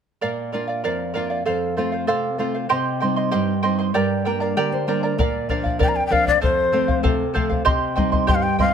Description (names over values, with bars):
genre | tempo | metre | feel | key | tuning
andean folk, Andean ensemble | 97 BPM | 2/4 | straight | unclear | A4 = 440 Hz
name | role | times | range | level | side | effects
charango | accompaniment | 0.2-8.7 s | G4 to C6 | -22 LUFS | right 4 dB | none
nylon-string guitar | accompaniment | 0.2-8.7 s | F2 to G5 | -24 LUFS | equal | none
bombo | percussion | 5.2-8.7 s | none | -22 LUFS | left 3 dB | none
breathy mellow large quena | melody | 5.8-8.7 s | C5 to Bb5 | -19 LUFS | left 3 dB | none
room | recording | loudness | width
moderate recital hall reverb, RT60 1.5 s | close, detailed microphones | -18 LUFS | side -7 dB against mid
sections
0.2-5.2 A section; 5.2-8.7 B section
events
nylon-string guitar fill 3.9-5.2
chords
0.2 Bb; 1.5 F; 2.7 Cm; 3.9 Gm; 5.2 Bb; 6.4 F; 7.7 Cm